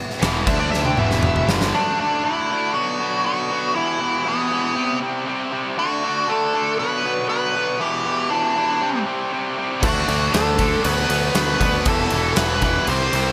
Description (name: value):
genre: hard rock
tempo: 118 BPM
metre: 4/4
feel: straight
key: E minor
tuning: A4 = 441 Hz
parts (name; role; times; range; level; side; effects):
- percussive tonewheel organ; sustained chords; 0.0-13.3 s; D3 to C6; -37 LUFS; equal; none
- big rock drum kit; drums; 0.1-1.7, 9.8-13.2 s; crash cymbal, kick drum, ride cymbal, snare drum, toms; -25 LUFS; equal; none
- distorted electric guitar; riff; 0.2-13.3 s; E2 to D4; -26 LUFS; equal; overdrive
- heavy high-gain guitar; riff; 0.2-1.7, 9.8-13.3 s; E2 to D4; -31 LUFS; equal; none
- heavy high-gain guitar; riff; 0.2-1.7, 9.8-13.3 s; E2 to D4; -32 LUFS; equal; none
- overdriven picked electric bass; bass; 0.2-1.7, 9.8-13.3 s; E1 to D2; -26 LUFS; equal; none
- nasal lead guitar with a parked wah; melody; 0.5-13.3 s; B3 to G5; -24 LUFS; equal; overdrive
room: moderate lush hall reverb, RT60 2.2 s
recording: bright 1980s-style digital production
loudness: -20 LUFS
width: mono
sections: 0.0-1.7 A section; 1.7-13.3 B section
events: lead electric guitar solo 0.0-1.7; drum fill 0.7-1.7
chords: 0.5 D5; 1.0 Em; 1.7 D; 2.7 Bm; 3.7 Em; 4.8 C; 5.8 D; 6.8 Bm; 7.8 Em; 8.8 C; 9.8 D; 10.8 Bm/D; 11.9 Em